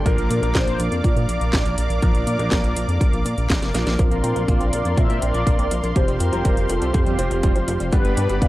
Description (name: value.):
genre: italo disco.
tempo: 122 BPM.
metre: 4/4.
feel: straight.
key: unclear.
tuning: A4 = 440 Hz.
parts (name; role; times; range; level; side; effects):
mellow synth brass; melody; 0.0-8.5 s; C4 to F5; -27 LUFS; equal; chorus, vintage 12-bit sampler grit, analog delay, shimmer reverb.
warm analog pad; sustained chords; 0.0-8.5 s; G4 to D6; -29 LUFS; left 1 dB; chorus, shimmer reverb.
warm grand piano; stabs; 0.0-8.5 s; F3 to C5; -27 LUFS; right 2 dB; low-pass filter, shimmer reverb.
chorused synth bass; bass; 0.0-8.5 s; F1 to Bb2; -23 LUFS; equal; tube saturation.
electronic kick drum; drums; 0.1-8.5 s; none; -20 LUFS; equal; none.
house drum kit; drums; 0.1-8.5 s; handclaps, hi-hat, snare drum, toms; -28 LUFS; equal; high-pass filter on hats, high-pass filter on snare, high-pass filter on toms, high-pass filter on room.
direct-recorded clean electric guitar; arpeggios; 4.0-8.5 s; F3 to D4; -32 LUFS; left 2 dB; warbly pitch drift, low-pass filter, analog delay, shimmer reverb.
room: little or no reverb.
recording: dry, gritty hardware recording, transformer saturation, cassette tape, lossy compression artefacts.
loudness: -17 LUFS.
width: side -16 dB against mid.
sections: 0.0-4.0 A section; 4.0-8.5 B section.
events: drum fill 3.6-4.0, 4.0-8.5; filter sweep on grand piano 4.0-8.5.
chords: 0.1 Bb; 4.0 Bbadd9; 6.0 Fsus2; 7.9 G.